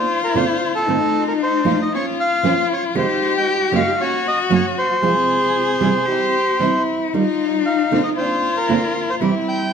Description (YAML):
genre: tango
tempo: 115 BPM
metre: 4/4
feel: rubato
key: F minor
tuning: A4 = 435 Hz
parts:
  - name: bandoneon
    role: melody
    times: 0.0-9.7 s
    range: G4 to G5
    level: -20 LUFS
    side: equal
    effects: none
  - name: warm cello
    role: second line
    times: 0.0-9.7 s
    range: Eb4 to Ab4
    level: -21 LUFS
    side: left 5 dB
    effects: none
  - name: warm studio string section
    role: stabs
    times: 0.0-9.7 s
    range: C3 to Gb4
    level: -26 LUFS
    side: right 3 dB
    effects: none
  - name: nylon-string guitar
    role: accompaniment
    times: 0.3-9.3 s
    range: F2 to Gb4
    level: -22 LUFS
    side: right 6 dB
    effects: none
room: moderate scoring stage reverb, RT60 1.8 s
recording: none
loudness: -16 LUFS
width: side -7 dB against mid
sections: 0.0-9.7 A section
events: none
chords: 0.0 Bbadd9; 0.9 F7/A; 1.9 Bbm; 3.0 Fm7; 4.0 Gb; 5.0 Fm/C; 6.1 C; 7.1 Ebadd9; 8.2 Bbadd9; 9.2 C